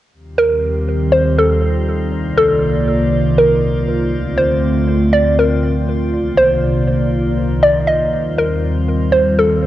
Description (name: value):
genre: hip hop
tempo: 120 BPM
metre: 4/4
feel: half-time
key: unclear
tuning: A4 = 440 Hz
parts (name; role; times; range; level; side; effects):
- dark analog pad; sustained chords; 0.1-9.7 s; C2 to D5; -16 LUFS; equal; chorus
- drifting glass-harmonics texture; texture; 0.6-9.7 s; G3 to D5; -27 LUFS; equal; chorus, built-in reverb
- hollow square pluck; melody; 0.4-9.6 s; A4 to Eb5; -15 LUFS; equal; chorus, cassette tape, analog delay
room: light reverb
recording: home recording on cassette, nothing above 10.8 kHz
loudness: -13 LUFS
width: side -13 dB against mid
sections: 0.1-9.7 A section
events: none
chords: 0.1 Eb69; 2.1 Cm11; 4.1 Dm7; 6.1 Cm11; 8.1 Eb69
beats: | 0.13 0.63 1.13 1.63 | 2.13 2.63 3.13 3.63 | 4.13 4.63 5.13 5.63 | 6.13 6.63 7.13 7.63 | 8.13 8.63 9.13 9.63